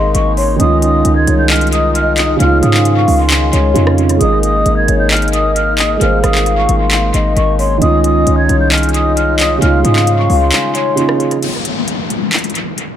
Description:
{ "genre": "hip hop, trap", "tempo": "133 BPM", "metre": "4/4", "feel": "half-time", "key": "unclear", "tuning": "A4 = 440 Hz", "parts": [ { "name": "breathy mellow concert flute", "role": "melody", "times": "0.0-11.4 s", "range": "C6 to Ab6", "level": "-19 LUFS", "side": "right 1 dB", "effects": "low-pass filter, dub echo" }, { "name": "hollow clarinet-like synth lead", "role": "second line", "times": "0.0-11.4 s", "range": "Db5 to F5", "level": "-18 LUFS", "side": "left 4 dB", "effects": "chorus, dub echo" }, { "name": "felt-muted upright piano", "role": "accompaniment", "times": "0.0-11.4 s", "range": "Db3 to Eb5", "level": "-17 LUFS", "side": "right 6 dB", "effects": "low-pass filter, dub echo" }, { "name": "pedal harmonium", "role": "sustained chords", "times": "0.0-11.4 s", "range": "Eb3 to F4", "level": "-20 LUFS", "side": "left 1 dB", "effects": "none" }, { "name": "hard-hitting 808-style bass", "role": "bass", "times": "0.0-10.5 s", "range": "Ab1 to Ab2", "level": "-14 LUFS", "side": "left 1 dB", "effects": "none" }, { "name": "trap drum kit", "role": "drums", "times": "0.1-12.9 s", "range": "crash cymbal, handclaps, hi-hat, rim click", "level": "-18 LUFS", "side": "left 1 dB", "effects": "dub echo" }, { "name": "downlifter", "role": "sound effects", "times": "11.4-13.0 s", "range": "none", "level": "-18 LUFS", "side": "left 4 dB", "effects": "none" } ], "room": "light reverb, small room ambience", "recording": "echo-heavy mix", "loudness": "-10 LUFS", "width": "side -10 dB against mid", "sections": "0.0-11.4 A section; 11.4-13.0 B section", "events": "break 10.5-11.4, 11.4-13.0", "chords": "0.0 Absus2; 0.6 Dbadd9; 4.2 Absus2; 7.8 Dbadd9; 11.4 N.C.", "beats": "0.15 | 0.60 1.05 1.50 1.95 | 2.40 2.85 3.30 3.76 | 4.21 4.66 5.11 5.56 | 6.01 6.46 6.91 7.37 | 7.82 8.27 8.72 9.17 | 9.62 10.07 10.52 10.97 | 11.43 11.88 12.33 12.78" }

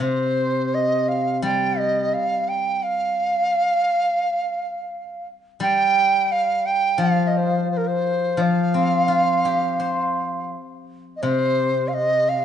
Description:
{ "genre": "chinese traditional, Chinese chamber ensemble", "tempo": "85 BPM", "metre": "4/4", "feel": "rubato", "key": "C yu mode", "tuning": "A4 = 440 Hz", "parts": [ { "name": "large dizi", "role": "melody", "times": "0.0-12.4 s", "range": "Bb4 to G5", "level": "-20 LUFS", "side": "right 2 dB", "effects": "none" }, { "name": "steel-string zither", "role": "accompaniment", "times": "0.0-12.4 s", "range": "C3 to C5", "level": "-23 LUFS", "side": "left 3 dB", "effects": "none" } ], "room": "moderate recital hall reverb, RT60 1.5 s", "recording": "dark, warm production, nothing above 10.6 kHz", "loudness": "-18 LUFS", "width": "side -9 dB against mid", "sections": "0.0-12.4 A section", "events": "none", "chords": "none", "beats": "| 0.00 0.71 1.43 2.13 | 2.83 3.53 4.23 4.93 | 5.62 6.31 7.00 7.70 | 8.40 9.10 9.80 10.53 | 11.25 11.96" }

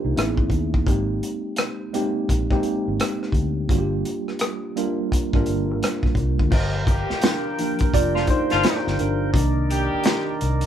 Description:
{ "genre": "R&B, neo-soul", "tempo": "85 BPM", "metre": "4/4", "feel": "swing 63% on 16ths", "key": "unclear", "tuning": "A4 = 439 Hz", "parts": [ { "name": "mellow tine electric piano", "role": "accompaniment", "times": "0.0-10.7 s", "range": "Eb3 to Eb5", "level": "-24 LUFS", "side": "right 2 dB", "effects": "medium stereo tremolo" }, { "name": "vintage muted fingered electric bass", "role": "bass", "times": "0.0-10.6 s", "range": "F1 to Eb2", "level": "-25 LUFS", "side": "left 1 dB", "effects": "none" }, { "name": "crunchy breakbeat drum kit", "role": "drums", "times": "0.2-10.7 s", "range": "crash cymbal, hi-hat, kick drum, rim click, snare drum", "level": "-22 LUFS", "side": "equal", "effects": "none" }, { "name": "tonewheel organ", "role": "sustained chords", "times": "6.5-10.7 s", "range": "Eb3 to G4", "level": "-29 LUFS", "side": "left 1 dB", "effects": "slow rotary speaker" }, { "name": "warm horn section", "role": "stabs", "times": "6.9-10.4 s", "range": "F3 to G4", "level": "-26 LUFS", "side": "left 2 dB", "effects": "none" } ], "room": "moderate small room reverb, RT60 0.5 s", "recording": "band playing live in one room", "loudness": "-20 LUFS", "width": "side -10 dB against mid", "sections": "0.0-6.5 A section; 6.5-10.7 B section", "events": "tine electric piano solo 6.5-10.7", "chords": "0.2 Amaj7; 0.9 Abmaj7; 3.7 Gm7; 9.3 Cm9", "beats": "0.16 | 0.87 1.57 2.28 2.99 | 3.69 4.40 5.10 5.81 | 6.51 7.22 7.93 8.63 | 9.34 10.04" }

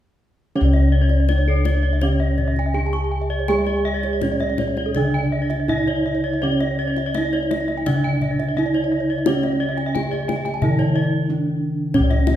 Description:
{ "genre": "Balinese gamelan", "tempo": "82-92 BPM", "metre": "4/4", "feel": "straight", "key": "unclear", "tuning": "A4 = 439 Hz", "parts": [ { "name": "gamelan-type bronze metallophone", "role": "melody", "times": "0.6-12.4 s", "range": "C#4 to G#4-45c", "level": "-24 LUFS", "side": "right 2 dB", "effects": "none" }, { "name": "gamelan-type bronze metallophone", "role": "accompaniment", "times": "0.6-12.4 s", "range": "C#3 to G#3-45c", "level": "-28 LUFS", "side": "right 1 dB", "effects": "none" }, { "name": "gamelan-type bronze metallophone", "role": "arpeggios", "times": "0.6-12.4 s", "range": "A4-40c to C#6", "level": "-27 LUFS", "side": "left 3 dB", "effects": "none" }, { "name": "gamelan-type bronze metallophone", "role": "arpeggios", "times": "0.6-12.3 s", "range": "A4-40c to A5-40c", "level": "-29 LUFS", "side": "right 6 dB", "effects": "none" }, { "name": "gamelan-type bossed gongs", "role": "bass", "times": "0.6-12.4 s", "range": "C#2 to G#4-45c", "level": "-21 LUFS", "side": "left 1 dB", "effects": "none" }, { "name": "kendang", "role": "percussion", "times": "0.7-12.4 s", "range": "none", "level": "-28 LUFS", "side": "left 3 dB", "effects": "none" } ], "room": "wet recital hall reverb, RT60 1.5 s", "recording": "recorded in a church or concert hall", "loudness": "-18 LUFS", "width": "side -11 dB against mid", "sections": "0.6-11.9 A section", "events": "none", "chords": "none", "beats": "| 0.57 1.30 2.03 2.76 | 3.49 4.22 4.96 5.69 | 6.42 7.14 7.86 8.57 | 9.26 9.95 10.62 11.29 | 11.95" }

